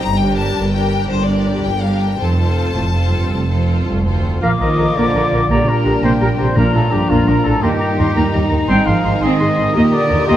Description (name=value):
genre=cinematic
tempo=112 BPM (dotted quarters)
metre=12/8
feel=straight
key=Bb major from 4.4 s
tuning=A4 = 439 Hz
part: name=clear chamber violin section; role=melody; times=0.0-10.4 s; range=F4 to Bb5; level=-26 LUFS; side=left 7 dB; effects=none
part: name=rich symphonic cello section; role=bass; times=0.0-10.4 s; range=C2 to G3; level=-20 LUFS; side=right 1 dB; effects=none
part: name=rich symphonic double bass section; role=bass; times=0.0-10.4 s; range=F1 to Eb2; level=-19 LUFS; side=right 1 dB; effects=none
part: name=warm symphonic violin section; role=second line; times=0.2-10.4 s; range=D4 to C5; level=-26 LUFS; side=left 4 dB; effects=none
part: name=rich symphonic viola section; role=accompaniment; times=0.2-10.4 s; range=D3 to F4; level=-22 LUFS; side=right 2 dB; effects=none
part: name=clear oboe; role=second line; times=4.4-10.4 s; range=Bb5 to C6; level=-27 LUFS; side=left 2 dB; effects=none
part: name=dark clarinet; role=second line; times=4.4-10.4 s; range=D4 to Bb4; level=-25 LUFS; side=left 2 dB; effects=none
part: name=silver concert flute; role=second line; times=4.4-10.4 s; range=G5 to Eb6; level=-24 LUFS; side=left 2 dB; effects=none
part: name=mellow trombone section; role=sustained chords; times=4.4-10.4 s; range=Ab2 to G3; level=-25 LUFS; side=right 5 dB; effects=none
part: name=warm French horn section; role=sustained chords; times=4.4-10.4 s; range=Bb3 to G4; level=-23 LUFS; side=left 4 dB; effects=none
part: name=mellow trumpet section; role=stabs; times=4.4-10.4 s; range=F4 to G5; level=-20 LUFS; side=equal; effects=none
part: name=timpani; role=percussion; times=6.6-7.1 s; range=Bb2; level=-21 LUFS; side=equal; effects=none
room=moderate scoring stage reverb, RT60 1.8 s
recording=none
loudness=-13 LUFS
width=side -12 dB against mid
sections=0.0-4.4 A section; 4.4-10.4 B section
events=none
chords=0.0 Gm; 2.2 F; 4.4 Bb; 5.5 Gm/Bb; 6.6 Bb; 7.6 Eb; 8.7 Ab; 9.7 Eb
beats=| 0.02 0.56 1.09 1.64 | 2.19 2.75 3.31 3.87 | 4.42 4.96 5.50 6.03 | 6.56 7.09 7.62 8.16 | 8.69 9.22 9.75 10.28